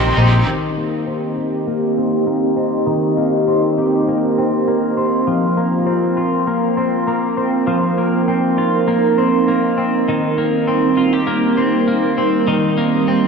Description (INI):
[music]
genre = dream pop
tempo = 100 BPM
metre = 4/4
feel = straight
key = C minor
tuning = A4 = 439 Hz
[part]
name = overdriven electric guitar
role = accompaniment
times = 0.0-0.5 s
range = C3 to G4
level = -23 LUFS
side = right 3 dB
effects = harmonic tremolo, lush chorus
[part]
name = warbly tape-like pad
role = sustained chords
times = 0.0-13.3 s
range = G3 to C6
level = -17 LUFS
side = right 2 dB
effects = chorus, built-in reverb, phaser, low-pass filter
[part]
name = twelve-string electric guitar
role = arpeggios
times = 0.0-13.3 s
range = Eb3 to G4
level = -18 LUFS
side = left 2 dB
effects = wide subtle chorus, low-pass filter, tape echo
[sound]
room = moderate huge ambient reverb, RT60 4.4 s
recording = played on a big sound system in a bare room, large studio reverb, lossy compression artefacts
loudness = -14 LUFS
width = side -5 dB against mid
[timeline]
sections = 0.5-13.3 A section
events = filter sweep 0.5-13.3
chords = 0.5 Cm7; 5.3 Fsus4; 10.1 Cm7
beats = | 0.47 1.07 1.68 2.27 | 2.88 3.48 4.08 4.67 | 5.28 5.88 6.47 7.08 | 7.67 8.28 8.88 9.47 | 10.07 10.68 11.28 11.88 | 12.47 13.07